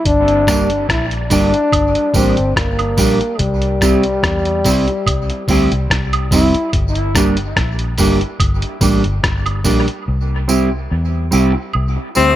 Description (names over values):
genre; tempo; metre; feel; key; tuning
dub reggae; 72 BPM; 4/4; swing 55% on 16ths; G dorian; A4 = 439 Hz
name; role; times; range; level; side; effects
dark trombone; melody; 0.0-6.7 s; G3 to E4; -18 LUFS; left 1 dB; dub echo
vintage muted fingered electric bass; bass; 0.1-12.4 s; F1 to E2; -19 LUFS; equal; none
lo-fi sampler-style drum kit; drums; 0.1-10.1 s; hi-hat, kick drum, rim click; -18 LUFS; equal; none
mellow electric guitar; accompaniment; 0.5-12.4 s; G3 to G4; -18 LUFS; right 2 dB; high-pass filter, dub echo
tambourine and woodblock; percussion; 0.5-12.4 s; none; -24 LUFS; right 4 dB; high-pass filter on perc, dub echo
bright tenor saxophone; second line; 12.2-12.4 s; C4; -11 LUFS; left 6 dB; high-pass filter
room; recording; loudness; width
light reverb, small room ambience; none; -13 LUFS; side -13 dB against mid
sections
0.0-12.4 A section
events
part muted 10.1-12.4; band accent 10.1-12.4; filter sweep 10.1-12.4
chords
0.1 Gm; 3.4 C; 6.7 Gm; 10.1 C